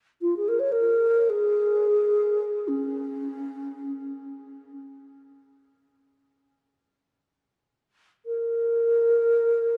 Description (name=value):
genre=world meditative, free-time meditation music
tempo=free time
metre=none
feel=none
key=Db major pentatonic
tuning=A4 = 439 Hz
part: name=mellow hollow bass flute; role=solo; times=0.2-9.8 s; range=Db4 to Db5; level=-25 LUFS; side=equal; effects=diffuse ambient delay
room=wet concert hall reverb, RT60 2.1 s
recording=dark, warm production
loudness=-24 LUFS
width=mono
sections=0.0-7.0 A section; 7.0-9.8 A section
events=none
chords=none